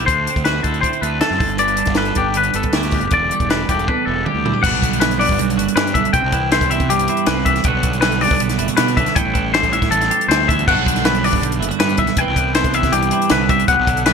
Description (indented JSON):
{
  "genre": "math rock and midwest emo",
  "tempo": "159 BPM",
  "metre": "4/4",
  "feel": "straight",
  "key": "unclear",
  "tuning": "A4 = 441 Hz",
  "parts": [
    { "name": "twelve-string electric guitar", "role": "accompaniment", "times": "0.0-14.1 s", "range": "E2 to A4", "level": "-21 LUFS", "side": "right 13 dB", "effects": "wide subtle chorus" },
    { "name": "twangy electric guitar", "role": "arpeggios", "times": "0.0-14.1 s", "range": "G4 to G5", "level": "-18 LUFS", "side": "left 6 dB", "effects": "lush chorus, ping-pong delay" },
    { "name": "fuzz fingered electric bass", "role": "bass", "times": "0.0-14.1 s", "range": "E1 to C3", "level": "-22 LUFS", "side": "equal", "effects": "overdrive" },
    { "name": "compact cocktail drum kit", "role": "drums", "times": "0.1-14.1 s", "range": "crash cymbal, hi-hat, kick drum, snare drum, toms", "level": "-20 LUFS", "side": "equal", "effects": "gated reverb" }
  ],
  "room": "moderate plate reverb, RT60 2.1 s",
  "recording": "bright 1980s-style digital production",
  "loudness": "-14 LUFS",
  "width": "side -6 dB against mid",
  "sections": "0.0-4.6 A section; 4.6-14.1 B section",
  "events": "drum fill 3.9-4.6",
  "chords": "0.1 D7; 1.4 Gmaj7; 3.1 Em7; 4.6 Gmaj7; 6.1 Cmaj7; 7.7 Gmaj7/B; 9.2 Am7; 10.7 Gmaj7; 12.2 Cmaj7",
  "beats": "| 0.09 0.47 0.85 1.23 | 1.61 1.99 2.37 2.74 | 3.12 3.50 3.88 4.26 | 4.64 5.01 5.39 5.77 | 6.15 6.52 6.90 7.28 | 7.66 8.03 8.41 8.79 | 9.16 9.54 9.92 10.30 | 10.67 11.05 11.43 11.81 | 12.18 12.56 12.94 13.31 | 13.69 14.07"
}